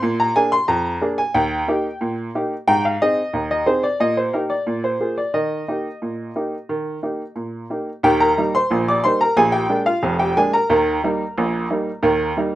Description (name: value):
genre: ragtime piano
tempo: 90 BPM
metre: 2/4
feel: straight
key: Eb major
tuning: A4 = 436 Hz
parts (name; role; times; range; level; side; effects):
- clear upright piano; solo; 0.0-12.6 s; F1 to D6; -17 LUFS; equal; none
room: light reverb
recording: rough home demo mix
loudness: -17 LUFS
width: side -14 dB against mid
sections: 0.0-8.0 A section; 8.0-12.6 B section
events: none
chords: 0.0 Bb7; 1.3 Eb; 2.7 Ab; 4.0 Eb/Bb; 4.7 Bb5; 5.3 Eb; 9.4 Bb7; 10.7 Eb